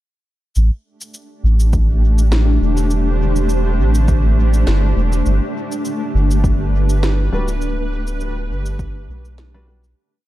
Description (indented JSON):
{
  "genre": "ambient dub",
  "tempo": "102 BPM",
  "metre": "4/4",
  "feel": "swing 55% on 16ths",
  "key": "A minor",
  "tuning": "A4 = 435 Hz",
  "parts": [
    { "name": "granular cloud pad", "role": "sustained chords", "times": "1.5-10.0 s", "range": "A3 to C5", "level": "-22 LUFS", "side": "equal", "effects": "built-in reverb" },
    { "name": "soft dub sub bass", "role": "bass", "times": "0.6-9.9 s", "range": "D1 to B1", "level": "-15 LUFS", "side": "equal", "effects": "none" },
    { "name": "electronic cabasa and snare drum", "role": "drums", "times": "0.6-9.9 s", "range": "none", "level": "-28 LUFS", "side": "equal", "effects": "dub echo" },
    { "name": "electronic kick drum", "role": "drums", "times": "1.7-8.9 s", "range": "none", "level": "-21 LUFS", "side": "equal", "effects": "overdrive" },
    { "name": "warm upright piano", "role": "stabs", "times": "7.3-9.8 s", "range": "G3 to B4", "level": "-28 LUFS", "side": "left 2 dB", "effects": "dub echo" }
  ],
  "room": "little or no reverb",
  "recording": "echo-heavy mix",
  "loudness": "-14 LUFS",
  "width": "side -15 dB against mid",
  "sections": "0.6-10.0 groove",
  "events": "fade-out 6.8-10.0",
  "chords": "0.6 Am; 5.3 G"
}